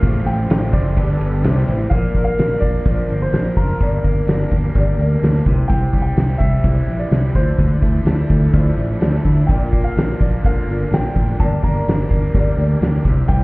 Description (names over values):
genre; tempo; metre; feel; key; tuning
folk rock and heartland rock; 127 BPM; 4/4; straight; unclear; A4 = 441 Hz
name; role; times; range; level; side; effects
clear baby grand piano; melody; 0.0-13.4 s; Bb4 to Bb5; -28 LUFS; right 1 dB; none
picked twelve-string acoustic guitar; accompaniment; 0.0-13.4 s; G2 to Bb4; -26 LUFS; left 2 dB; none
tonewheel organ; sustained chords; 0.0-13.4 s; Bb3 to E5; -33 LUFS; equal; none
biting overdriven guitar; riff; 0.0-13.4 s; G2 to G4; -27 LUFS; right 1 dB; none
fingered electric bass; bass; 0.0-13.4 s; F#1 to D3; -18 LUFS; equal; none
loose indie drum kit; drums; 0.0-13.4 s; hi-hat, kick drum, ride cymbal, snare drum; -18 LUFS; equal; none
room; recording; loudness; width
small room ambience; heard muffled through a wall, stone room reverb, EQ, nothing above 10.4 kHz; -14 LUFS; side -24 dB against mid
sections
0.0-1.9 A section; 1.9-13.4 B section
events
none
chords
0.0 Fadd9/A; 1.0 Gadd9; 1.4 C; 1.9 Bb; 3.8 Gm; 5.5 C; 7.4 Dmadd9; 9.5 Bb; 11.4 Gm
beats
| 0.03 0.50 0.97 1.44 | 1.91 2.38 2.86 3.33 | 3.81 4.28 4.75 5.22 | 5.70 6.17 6.65 7.12 | 7.59 8.07 8.54 9.02 | 9.49 9.96 10.44 10.91 | 11.39 11.86 12.34 12.81 | 13.28